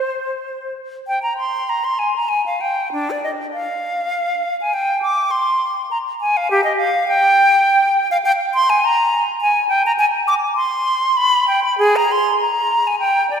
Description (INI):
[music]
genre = classical, baroque-style fantasia for unaccompanied flute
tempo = 92-106 BPM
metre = 3/4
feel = rubato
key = unclear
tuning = A4 = 441 Hz
[part]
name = bright silver concert flute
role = solo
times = 0.0-13.4 s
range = D4 to D6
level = -15 LUFS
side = equal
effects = none
[sound]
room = wet church reverb, RT60 2.5 s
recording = minimal, uncompressed stereo recording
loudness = -15 LUFS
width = side -7 dB against mid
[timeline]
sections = 0.0-1.1 A section; 1.1-13.4 A section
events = none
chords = none